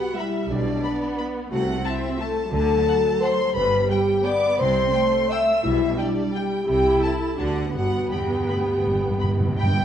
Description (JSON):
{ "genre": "classical, orchestral ballroom waltz", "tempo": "155-191 BPM", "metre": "3/4", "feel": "rubato", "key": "G major", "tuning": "A4 = 441 Hz", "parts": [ { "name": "rich chamber violin section", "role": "second line", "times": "0.0-9.6 s", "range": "D5 to E6", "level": "-31 LUFS", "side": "left 3 dB", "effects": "none" }, { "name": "dark chamber viola section", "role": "accompaniment", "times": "0.0-9.7 s", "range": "F#3 to E4", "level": "-29 LUFS", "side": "right 1 dB", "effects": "none" }, { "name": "mellow French horn section", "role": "sustained chords", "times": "0.0-9.6 s", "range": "D4 to E5", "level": "-22 LUFS", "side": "left 2 dB", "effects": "none" }, { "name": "rich symphonic violin section", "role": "melody", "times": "0.2-9.8 s", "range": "F#5 to B5", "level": "-36 LUFS", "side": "left 2 dB", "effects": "none" }, { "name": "clear chamber double bass section", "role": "bass", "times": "0.5-9.1 s", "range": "G1 to D2", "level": "-30 LUFS", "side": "right 2 dB", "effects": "none" }, { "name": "rich studio cello section", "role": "bass", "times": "0.5-9.8 s", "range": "D2 to D3", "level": "-30 LUFS", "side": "right 3 dB", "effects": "none" }, { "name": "timpani", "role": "percussion", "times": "3.6-4.0, 7.7-9.8 s", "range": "G2", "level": "-26 LUFS", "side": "equal", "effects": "none" }, { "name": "bright small flute group", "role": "second line", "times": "9.6-9.8 s", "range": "G5", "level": "-26 LUFS", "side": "right 8 dB", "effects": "none" } ], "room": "wet scoring stage reverb, RT60 1.5 s", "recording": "worn, warbling old tape, cassette tape, warbly pitch drift", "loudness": "-20 LUFS", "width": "side -9 dB against mid", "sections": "0.0-9.8 A section", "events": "timpani fill 7.7-9.8", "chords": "0.0 G; 1.5 Am/C; 2.5 D7; 3.6 G; 4.6 C; 5.6 G/B; 6.7 Am/C; 7.4 D; 7.7 G" }